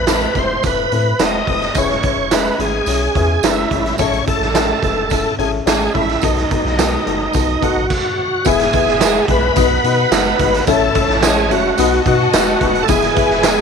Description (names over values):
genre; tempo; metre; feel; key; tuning
uptempo 1960s-style soul; 108 BPM; 4/4; straight; E major; A4 = 441 Hz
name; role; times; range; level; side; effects
bright tonewheel organ; melody; 0.0-13.6 s; D#4 to D#5; -18 LUFS; right 1 dB; chorus vibrato, slow rotary speaker
dark upright piano; accompaniment; 0.0-13.6 s; A2 to E5; -20 LUFS; left 14 dB; none
warm sub bass; bass; 0.0-13.6 s; D#1 to B2; -23 LUFS; equal; none
raw garage drum kit; drums; 0.1-13.6 s; crash cymbal, hi-hat, kick drum, snare drum; -18 LUFS; right 5 dB; none
tambourine; percussion; 0.1-13.6 s; none; -28 LUFS; right 16 dB; none
warm symphonic violin section; second line; 8.5-13.6 s; B3 to A5; -21 LUFS; equal; none
room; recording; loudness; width
light reverb, studio reverb; 1960s-style stereo with parts hard left and right; -13 LUFS; side -6 dB against mid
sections
0.0-8.5 A section; 8.5-13.6 B section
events
stop 7.9-8.5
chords
0.0 Amadd9; 1.8 E6; 4.0 Amaj7; 6.2 B7; 8.5 E; 9.6 B; 10.7 A; 11.8 B; 12.9 E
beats
0.08 0.64 1.20 | 1.75 2.31 2.87 3.43 | 3.99 4.55 5.11 5.67 | 6.22 6.78 7.34 7.90 | 8.45 9.01 9.56 10.12 | 10.67 11.23 11.78 12.33 | 12.88 13.44